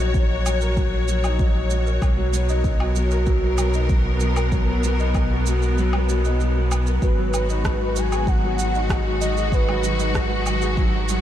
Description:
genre	piano and strings electronica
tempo	96 BPM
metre	4/4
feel	straight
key	G# minor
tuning	A4 = 441 Hz
part	clear symphonic string section	sustained chords	0.0-11.2 s	B2 to C#5	-27 LUFS	equal	sidechain pumping
part	felt-muted upright piano	riff	0.0-11.2 s	F#3 to A#4	-26 LUFS	left 1 dB	lush chorus, ping-pong delay
part	warm sub bass	bass	0.0-11.2 s	G#1 to B1	-22 LUFS	equal	sidechain pumping
part	electronic kick drum	drums	0.1-10.9 s	none	-22 LUFS	equal	none
part	electronic shaker, woodblock and rim click	drums	0.1-11.2 s	none	-33 LUFS	right 1 dB	none
part	warm velvety synth lead	melody	7.0-10.5 s	B4 to G#5	-28 LUFS	equal	chorus, ping-pong delay
room	light reverb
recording	none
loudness	-18 LUFS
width	side -11 dB against mid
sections	0.0-11.2 A section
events	kick drops out 5.8-7.0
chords	0.0 D#m7/A#; 2.0 Bmaj7; 7.0 G#m7

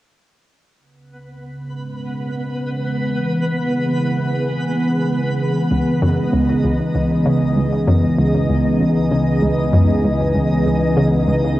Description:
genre	ambient, sequencer-driven space music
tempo	97 BPM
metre	4/4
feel	straight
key	C# minor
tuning	A4 = 438 Hz
part	sweeping resonant pad	sustained chords	0.8-11.6 s	C#3 to G#4	-18 LUFS	equal	chorus
part	twinkling granular texture	texture	1.7-11.6 s	B3 to D#5	-25 LUFS	equal	built-in reverb, shimmer reverb
part	hollow square pluck	riff	5.7-11.4 s	C#2 to C#3	-19 LUFS	equal	chorus, ping-pong delay
part	round analog bass	bass	5.7-11.6 s	C#2	-29 LUFS	equal	tube saturation
room	wet spring reverb, RT60 1.6 s, digital ambience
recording	home recording on cassette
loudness	-15 LUFS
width	side -15 dB against mid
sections	0.8-5.7 A section; 5.7-11.6 B section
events	filter sweep on analog synth pad 0.8-5.7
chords	0.8 C#m7

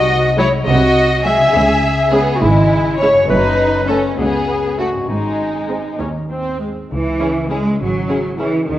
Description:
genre	cinematic, playful, whimsical film cue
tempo	68 BPM (dotted quarters)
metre	6/8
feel	straight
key	C# minor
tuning	A4 = 440 Hz
part	rich studio violin section	melody	0.0-8.5 s	D#4 to E5	-20 LUFS	left 1 dB	none
part	clear clarinet	second line	0.0-6.0 s	D#4 to E5	-18 LUFS	left 1 dB	none
part	warm studio violin section	second line	0.0-8.5 s	G#3 to G#4	-20 LUFS	left 1 dB	none
part	concert harp	arpeggios	0.0-8.8 s	F#2 to C#5	-24 LUFS	left 4 dB	none
part	clear studio cello section	bass	0.0-8.8 s	C#2 to G#3	-21 LUFS	right 1 dB	none
part	rich studio double bass section	bass	0.0-8.8 s	F#1 to D#2	-22 LUFS	right 2 dB	none
part	rich studio viola section	accompaniment	0.4-8.5 s	F#3 to C#4	-24 LUFS	right 1 dB	none
part	mellow French horn section	sustained chords	7.2-8.5 s	C#4 to G#4	-25 LUFS	left 2 dB	none
room	wet scoring stage reverb, RT60 2.0 s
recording	worn, warbling old tape, cassette tape, warbly pitch drift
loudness	-13 LUFS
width	side -13 dB against mid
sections	0.0-6.9 A section; 6.9-8.8 B section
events	none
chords	0.0 G#7/B#; 1.5 C#m; 3.3 F#m; 5.1 G#; 6.9 C#m

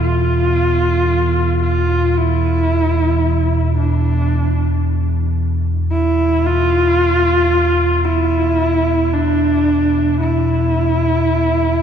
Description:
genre	dark ambient drone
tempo	56 BPM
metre	4/4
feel	straight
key	E in sen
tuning	A4 = 440 Hz
part	dark horsehead fiddle	melody	0.0-11.8 s	D4 to F4	-16 LUFS	right 1 dB	ping-pong delay
part	deep rumbling drone	drone	0.0-11.8 s	E2 to B2	-16 LUFS	equal	built-in reverb
part	bronze singing bowl	texture	0.0-11.8 s	A4	-42 LUFS	right 8 dB	none
room	wet cathedral reverb, RT60 4.7 s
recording	dark, warm production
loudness	-13 LUFS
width	side -8 dB against mid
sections	0.0-11.8 A section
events	none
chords	0.0 E5

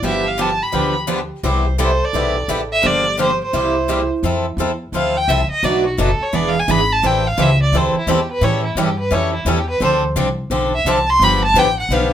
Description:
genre	acoustic string swing (jazz manouche)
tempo	172 BPM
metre	4/4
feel	swing 61% on 8ths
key	C major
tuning	A4 = 440 Hz
part	warm violin	melody	0.0-12.1 s	E4 to C6	-18 LUFS	right 1 dB	none
part	picked steel-string acoustic guitar	second line	0.0-4.1 s	E4 to C5	-27 LUFS	right 4 dB	none
part	picked steel-string acoustic guitar	accompaniment	0.0-12.1 s	B2 to B4	-23 LUFS	right 7 dB	none
part	picked swing-style acoustic guitar	accompaniment	0.0-12.1 s	B2 to A4	-20 LUFS	left 4 dB	none
part	upright bass	bass	0.0-12.1 s	E1 to A2	-21 LUFS	left 1 dB	none
room	moderate studio reverb, RT60 0.5 s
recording	minimal, uncompressed stereo recording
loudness	-15 LUFS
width	side -10 dB against mid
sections	0.0-4.2 A section; 4.2-12.1 B section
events	violin solo 4.2-12.1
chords	0.0 G7; 1.4 Cmaj7; 2.8 Gm7; 3.5 C7; 4.2 Fmaj7; 5.6 Bm7; 6.3 E7; 7.0 Am7; 8.4 A7; 9.8 Dm7; 11.2 G7

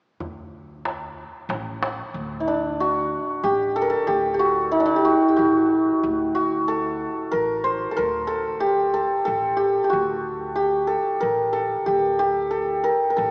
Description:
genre	Persian modal ensemble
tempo	92 BPM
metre	3/4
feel	straight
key	D dastgah homayun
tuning	A4 = 444 Hz
part	upright bass	bass	0.2-13.3 s	A1 to D2	-37 LUFS	equal	none
part	tombak	percussion	0.2-2.0 s	none	-30 LUFS	equal	none
part	santur	melody	2.4-13.3 s	D4 to C5	-19 LUFS	equal	none
room	wet cathedral reverb, RT60 5.3 s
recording	recorded in a church or concert hall, small speaker sound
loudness	-19 LUFS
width	side -35 dB against mid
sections	0.2-2.1 A section; 2.1-13.3 B section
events	none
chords	none

